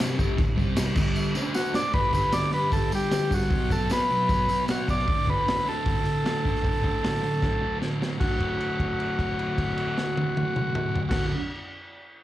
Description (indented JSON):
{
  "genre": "garage rock duo or trio",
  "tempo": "153 BPM",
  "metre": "4/4",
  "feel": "straight",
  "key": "D mixolydian",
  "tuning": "A4 = 440 Hz",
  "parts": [
    { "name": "thick fuzz guitar", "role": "riff", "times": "0.0-11.3 s", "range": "D2 to D4", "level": "-28 LUFS", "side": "equal", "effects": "distortion" },
    { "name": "crunchy breakbeat drum kit", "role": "drums", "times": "0.0-11.2 s", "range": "crash cymbal, hi-hat, kick drum, snare drum, toms", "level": "-27 LUFS", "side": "equal", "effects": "none" },
    { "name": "tambourine", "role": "percussion", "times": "0.0-5.0 s", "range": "none", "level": "-41 LUFS", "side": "right 2 dB", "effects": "none" },
    { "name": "combo organ", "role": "melody", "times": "1.5-11.3 s", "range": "F#4 to D5", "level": "-27 LUFS", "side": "equal", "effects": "none" }
  ],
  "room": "small room reverb",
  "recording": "live gig heard through the venue's PA, club reverb",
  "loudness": "-23 LUFS",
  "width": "side -14 dB against mid",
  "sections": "0.0-1.9 A section; 1.9-8.2 B section; 8.2-11.3 C section",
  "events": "drum fill 1.5-1.9, 7.4-8.2; held note 8.2-11.1",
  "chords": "0.0 D5; 0.6 C5; 1.0 G5; 1.4 D5; 1.9 G5; 3.5 B5; 5.1 D5"
}